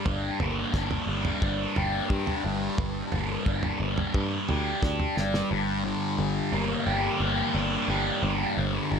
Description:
psychedelic rock; 88 BPM; 4/4; straight; G minor; A4 = 440 Hz
thick fuzz guitar; riff; 0.0-9.0 s; G2 to G4; -27 LUFS; equal; distortion, phaser
picked electric bass; bass; 0.1-9.0 s; G1 to G2; -31 LUFS; equal
damped 70s drum kit; drums; 0.1-5.5 s; kick drum, snare drum, toms; -30 LUFS; right 1 dB
small room ambience; -25 LUFS; side -6 dB against mid
0.0-5.5 A section; 5.5-9.0 B section
drum fill 5.2-5.5
0.0 Gm

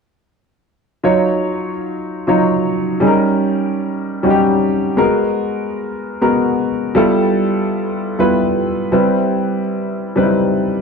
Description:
pop; 122 BPM; 4/4; straight; A4 = 440 Hz
dark baby grand piano; accompaniment; 1.0-10.8 s; Gb3 to Db5; -14 LUFS; equal; lush chorus
light reverb; dry, close 1970s-style studio recording; -14 LUFS; side -5 dB against mid
1.0-10.8 A section
1.0 Ebm9; 3.0 Eb7; 5.0 Abm9; 7.0 G13; 8.9 Cmaj7

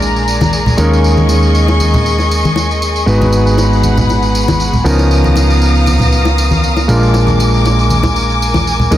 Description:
nu-disco, nu disco; 118 BPM; 4/4; swing 53% on 16ths; A4 = 439 Hz
warm electric grand piano; accompaniment; 0.0-9.0 s; E#3 to B4; -16 LUFS; right 1 dB; dub echo
dark chamber string section; sustained chords; 0.0-9.0 s; B3 to D#6; -17 LUFS; left 2 dB
hollow-body short-scale picked electric bass; bass; 0.0-9.0 s; G#1 to D#2; -13 LUFS; equal
tambourine; drums; 0.0-9.0 s; -22 LUFS; right 2 dB
bongos and congas; percussion; 0.4-9.0 s; -17 LUFS; left 1 dB
light reverb, small room reverb; dense, heavily limited modern master; -9 LUFS; side -12 dB against mid
0.0-9.0 A section
0.0 A#7; 0.8 D#7sus4; 3.1 G#m7; 4.9 C#13; 6.9 A#7

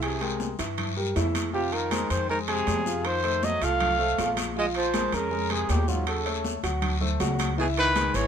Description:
Afro-Cuban jazz; 159 BPM; 4/4; straight; A4 = 440 Hz
breathy trumpet; melody; 0.0-8.3 s; F4 to F5; -27 LUFS; equal
growling baritone saxophone; second line; 0.0-8.3 s; Ab2 to A3; -33 LUFS; right 4 dB
warm grand piano; accompaniment; 0.0-8.3 s; Fb3 to G5; -31 LUFS; left 1 dB
upright bass; bass; 0.0-8.3 s; Ab1 to G2; -30 LUFS; equal
congas; percussion; 0.0-8.3 s; -36 LUFS; left 3 dB
guiro; percussion; 0.0-8.3 s; -38 LUFS; left 6 dB
timbales; percussion; 0.0-8.3 s; -34 LUFS; right 4 dB
moderate studio reverb, RT60 0.7 s; minimal, uncompressed stereo recording; -24 LUFS; side -8 dB against mid
0.0-8.3 A section
0.0 C7b13; 1.5 Fm7; 3.0 F7; 4.6 Bbm9; 6.1 Ebm7b5; 6.8 D7; 7.6 Dbm9

